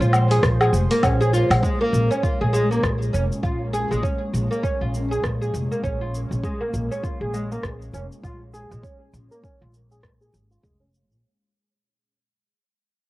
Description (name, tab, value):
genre	organic downtempo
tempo	100 BPM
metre	4/4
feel	swing 59% on 16ths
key	Bb minor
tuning	A4 = 439 Hz
part	airy breathy pad	sustained chords	0.0-11.2 s	Bb2 to C5	-31 LUFS	equal	chorus, phaser, sidechain pumping, cassette tape, plate reverb
part	oud	arpeggios	0.0-10.9 s	Ab3 to Ab4	-24 LUFS	right 1 dB	low-pass filter, cassette tape, tape echo, plate reverb
part	upright bass	bass	0.0-11.2 s	F1 to Bb2	-23 LUFS	equal	none
part	deep house drum kit	drums	0.0-11.2 s	cabasa, hi-hat, rim click, woodblock	-25 LUFS	equal	cassette tape
part	electronic kick drum	drums	0.4-10.8 s	none	-26 LUFS	equal	cassette tape
room	light reverb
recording	home recording on cassette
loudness	-20 LUFS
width	side -18 dB against mid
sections	0.0-1.6 A section; 1.6-11.2 B section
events	fade-out 1.6-11.2; filter sweep on oud 1.6-11.2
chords	0.0 Bb7(no3); 1.6 Bbm7